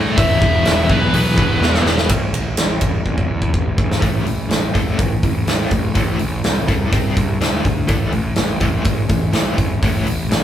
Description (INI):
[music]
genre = hard rock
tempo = 124 BPM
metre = 4/4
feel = straight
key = A minor from 4.0 s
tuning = A4 = 439 Hz
[part]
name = high-gain distorted guitar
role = riff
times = 0.0-2.1 s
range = E2 to D4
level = -23 LUFS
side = right 1 dB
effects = distortion
[part]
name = overdriven semi-hollow guitar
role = riff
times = 0.0-10.4 s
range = E2 to D4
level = -21 LUFS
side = equal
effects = tremolo
[part]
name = fuzz picked electric bass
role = bass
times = 0.0-10.4 s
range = E1 to A2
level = -22 LUFS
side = equal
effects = overdrive
[part]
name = nasal lead guitar with a parked wah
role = melody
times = 0.2-1.8 s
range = B4 to E5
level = -20 LUFS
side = left 1 dB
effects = overdrive
[part]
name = huge arena drum kit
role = drums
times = 0.2-10.4 s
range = hi-hat, kick drum, ride cymbal, snare drum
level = -17 LUFS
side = equal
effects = none
[sound]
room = light reverb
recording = band playing live in one room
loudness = -15 LUFS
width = side -10 dB against mid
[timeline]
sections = 0.0-2.1 A section; 2.1-4.0 B section; 4.0-10.4 C section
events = drum fill 1.6-2.1, 3.1-4.0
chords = 0.2 E5; 2.1 A5; 4.0 Am; 6.9 C5; 7.4 D5; 7.9 A5